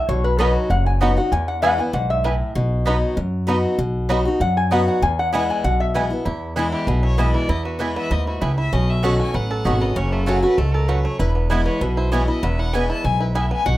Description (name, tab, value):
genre	bluegrass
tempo	194 BPM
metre	4/4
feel	straight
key	E major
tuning	A4 = 436 Hz
part	lap resonator guitar	second line	0.0-6.2 s	B4 to G#5	-22 LUFS	left 2 dB	none
part	picked steel-string acoustic guitar	accompaniment	0.0-13.8 s	E2 to F#4	-23 LUFS	left 1 dB	none
part	upright bass	bass	0.1-13.8 s	E1 to F#2	-21 LUFS	equal	none
part	bluegrass banjo	melody	0.4-13.8 s	A3 to A4	-27 LUFS	right 2 dB	none
part	mandolin	stabs	0.4-13.4 s	A3 to C#6	-26 LUFS	right 4 dB	none
part	clear fiddle	melody	6.7-13.8 s	F#4 to A5	-28 LUFS	left 3 dB	none
room	moderate small room reverb, RT60 0.5 s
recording	rough home demo mix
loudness	-17 LUFS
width	side -15 dB against mid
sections	0.0-6.3 A section; 6.3-13.8 A section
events	resonator guitar played with a steel bar solo 0.0-6.3; fiddle solo 6.3-13.8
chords	0.1 B; 1.3 E; 2.6 B; 5.0 E; 8.7 Badd9; 10.0 F#m; 11.2 E